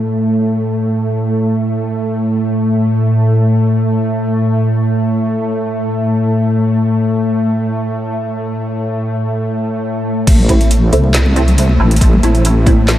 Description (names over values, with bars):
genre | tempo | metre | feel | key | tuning
deep dubstep | free time | none | none | A minor | A4 = 443 Hz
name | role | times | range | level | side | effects
bowed-like drone | sustained chords | 0.0-13.0 s | A2 to A3 | -14 LUFS | equal | built-in reverb
deep soft wobble bass | bass | 10.3-13.0 s | A1 to C2 | -11 LUFS | equal | chorus
electronic kick drum | drums | 10.3-12.8 s | none | -11 LUFS | equal | overdrive
garage drum kit | drums | 10.3-13.0 s | crash cymbal, handclaps, hi-hat, snare drum | -20 LUFS | equal | overdrive, low-pass filter on snare, low-pass filter on hats, low-pass filter on cymbals
congas | percussion | 10.3-12.8 s | none | -19 LUFS | left 2 dB | dub echo
filtered dub chord stab | stabs | 10.5-12.8 s | A3 to E4 | -18 LUFS | right 1 dB | phaser, ensemble chorus, dub echo
room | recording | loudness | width
wet huge ambient reverb, RT60 7.5 s | dreamy mix soaked in reverb | -12 LUFS | side -12 dB against mid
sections
0.0-10.3 A section; 10.3-13.0 B section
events
filter sweep on synth drone 0.0-10.3; drop 10.3-13.0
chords
0.0 N.C.; 10.3 Am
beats
free time